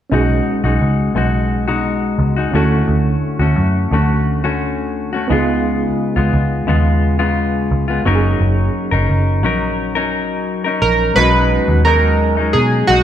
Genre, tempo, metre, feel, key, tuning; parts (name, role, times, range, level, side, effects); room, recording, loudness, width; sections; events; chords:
indie pop, bedroom pop; 87 BPM; 4/4; straight; A4 = 440 Hz
reed electric piano; accompaniment; 0.1-13.0 s; G#3 to A4; -24 LUFS; right 5 dB; overdrive, fast tremolo
semi-hollow electric guitar; accompaniment; 0.1-13.0 s; B2 to A#4; -18 LUFS; left 4 dB; warbly pitch drift
vintage muted picked electric bass; bass; 0.1-13.0 s; F#1 to B2; -16 LUFS; right 1 dB
chorused retro synth keys; melody; 10.8-13.0 s; F#4 to B4; -14 LUFS; right 2 dB
moderate recital hall reverb, RT60 1.4 s; recorded in a church or concert hall; -13 LUFS; side -10 dB against mid
0.1-11.2 A section; 11.2-13.0 B section
0.1 B6; 2.5 Dmaj7; 5.3 C#7; 8.1 F#6; 11.2 B6